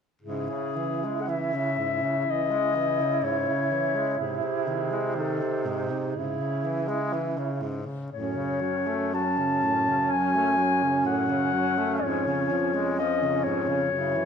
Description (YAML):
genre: classical, lyrical piece for single-reed quartet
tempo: 61 BPM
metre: 4/4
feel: uneven beats, rubato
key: C# minor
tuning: A4 = 440 Hz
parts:
  - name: mellow clarinet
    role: melody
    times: 0.2-14.3 s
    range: G#4 to A5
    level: -27 LUFS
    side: left 5 dB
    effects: none
  - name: warm alto saxophone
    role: second line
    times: 0.2-14.3 s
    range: C#4 to E4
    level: -30 LUFS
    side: right 8 dB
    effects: none
  - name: clear tenor saxophone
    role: accompaniment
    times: 0.2-14.3 s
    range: G#2 to A3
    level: -32 LUFS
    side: left 2 dB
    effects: none
  - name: mellow baritone saxophone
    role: bass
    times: 0.2-14.3 s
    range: E#2 to C#3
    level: -31 LUFS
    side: right 2 dB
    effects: none
room: moderate recital hall reverb, RT60 1.3 s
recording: none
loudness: -24 LUFS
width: side -7 dB against mid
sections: 0.2-14.3 A section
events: none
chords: 0.2 C#m/G#; 4.2 G#; 6.2 C#m/G#; 8.1 F#m; 12.0 C#/E#